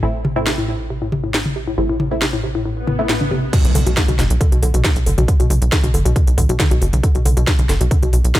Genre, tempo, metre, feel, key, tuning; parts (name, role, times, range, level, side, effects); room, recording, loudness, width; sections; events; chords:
driving peak-time techno; 137 BPM; 4/4; straight; A4 = 440 Hz
woody wave-folded pluck; riff; 0.0-8.4 s; G2 to A3; -23 LUFS; left 1 dB; chorus, vintage 12-bit sampler grit, sidechain pumping, digital delay
filtered dub chord stab; stabs; 0.0-3.1 s; A3 to E4; -25 LUFS; right 1 dB; phaser, lush chorus, vintage 12-bit sampler grit, sidechain pumping, digital delay
tight sequencer bass; bass; 0.0-8.3 s; F#1 to B1; -19 LUFS; equal; sidechain pumping
techno drum kit; drums; 0.2-8.4 s; crash cymbal, hi-hat, snare drum, toms; -21 LUFS; equal
swell and impact; sound effects; 2.8-5.3 s; -26 LUFS; left 1 dB
electronic kick drum; drums; 3.5-8.4 s; -16 LUFS; equal
little or no reverb; -14 LUFS; side -15 dB against mid
0.0-3.5 A section; 3.5-8.4 B section
filter sweep on synth arpeggio sound 0.0-3.5; swell 2.8-3.5; drop 3.5-8.4; impact 3.5-5.3
0.0 Am; 3.5 Bm